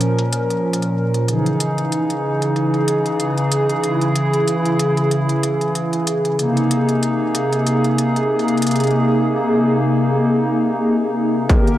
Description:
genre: IDM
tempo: 94 BPM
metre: 4/4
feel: swing 56% on 16ths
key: unclear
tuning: A4 = 443 Hz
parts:
  - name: hollow soft pad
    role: sustained chords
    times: 0.0-11.8 s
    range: Bb2 to Bb4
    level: -16 LUFS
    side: equal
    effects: chorus, sidechain pumping
  - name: electronic hi-hat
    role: drums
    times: 0.0-11.8 s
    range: none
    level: -26 LUFS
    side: left 1 dB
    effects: overdrive
  - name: electronic kick drum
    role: drums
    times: 11.5-11.6 s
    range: none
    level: -13 LUFS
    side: equal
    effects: distortion, overdrive
room: moderate huge ambient reverb, RT60 5.0 s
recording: worn, warbling old tape, cassette tape, warbly pitch drift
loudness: -16 LUFS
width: side -13 dB against mid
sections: 0.0-11.5 A section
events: none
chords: 0.0 Bbm; 1.3 C#madd9; 6.4 Abadd9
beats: 0.01 0.65 | 1.28 1.92 2.56 3.20 | 3.84 4.47 5.11 5.75 | 6.39 7.03 7.67 8.30 | 8.94 9.58 10.22 10.86 | 11.50

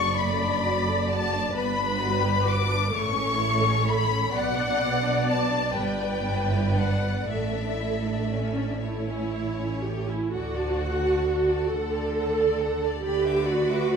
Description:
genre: classical, slow romantic movement for string orchestra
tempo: 37-46 BPM (dotted quarters)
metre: 6/8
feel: rubato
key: D major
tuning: A4 = 442 Hz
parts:
  - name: rich studio violin section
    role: melody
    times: 0.0-14.0 s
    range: A4 to D6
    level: -28 LUFS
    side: left 6 dB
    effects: none
  - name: warm studio violin section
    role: second line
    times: 0.0-14.0 s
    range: G3 to D6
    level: -33 LUFS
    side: left 3 dB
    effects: none
  - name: warm studio viola section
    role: accompaniment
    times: 0.0-14.0 s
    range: C#4 to D5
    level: -27 LUFS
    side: right 2 dB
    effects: none
  - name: rich studio double bass section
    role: bass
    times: 0.0-14.0 s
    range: F#1 to D2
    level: -31 LUFS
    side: right 3 dB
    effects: none
  - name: warm studio cello section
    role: bass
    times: 0.0-14.0 s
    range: F#2 to D3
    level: -30 LUFS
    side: right 3 dB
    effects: none
room: wet scoring stage reverb, RT60 1.7 s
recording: none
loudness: -23 LUFS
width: side -6 dB against mid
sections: 0.0-10.3 A section; 10.3-14.0 B section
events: none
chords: 0.0 D/F#; 1.5 Gmaj7; 2.9 A; 4.3 Bm; 5.8 Em7/G (rootless); 7.3 Asus4; 8.8 A; 10.3 D; 13.0 E5/D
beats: 0.18 | 1.54 2.92 | 4.33 5.76 | 7.28 8.83 | 10.34 11.71 | 13.03

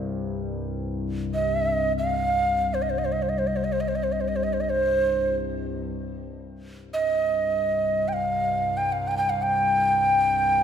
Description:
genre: world meditative, free-time meditation music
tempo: free time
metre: none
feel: none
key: C minor pentatonic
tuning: A4 = 445 Hz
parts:
  - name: analog drone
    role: drone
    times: 0.0-10.6 s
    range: C2 to G2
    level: -30 LUFS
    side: left 3 dB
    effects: chorus
  - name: breathy mellow Native American-style cedar flute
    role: melody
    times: 1.3-10.6 s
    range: C5 to G5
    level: -22 LUFS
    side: right 1 dB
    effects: none
room: wet church reverb, RT60 2.4 s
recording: none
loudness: -22 LUFS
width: side -8 dB against mid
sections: 0.0-5.9 A section; 5.9-10.6 A section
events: none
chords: none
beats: free time

